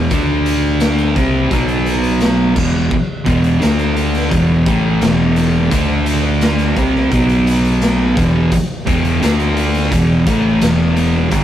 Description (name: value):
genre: stoner and doom metal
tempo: 86 BPM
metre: 4/4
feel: straight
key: E minor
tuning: A4 = 441 Hz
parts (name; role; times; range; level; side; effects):
- thick fuzz guitar; riff; 0.0-11.4 s; E2 to D4; -14 LUFS; equal; distortion
- fuzz fingered electric bass; bass; 0.0-11.4 s; E1 to D2; -18 LUFS; equal; overdrive
- raw garage drum kit; drums; 0.1-11.4 s; crash cymbal, hi-hat, kick drum, snare drum; -19 LUFS; left 1 dB; none
room: moderate studio reverb, RT60 0.5 s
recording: rough rehearsal-room recording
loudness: -12 LUFS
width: side -11 dB against mid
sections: 0.0-11.4 A section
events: none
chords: 0.1 D5; 1.2 C5; 1.5 B5; 2.6 E5; 3.6 D5; 4.3 E5; 5.7 D5; 6.8 C5; 7.1 B5; 8.2 E5; 9.2 D5; 9.9 E5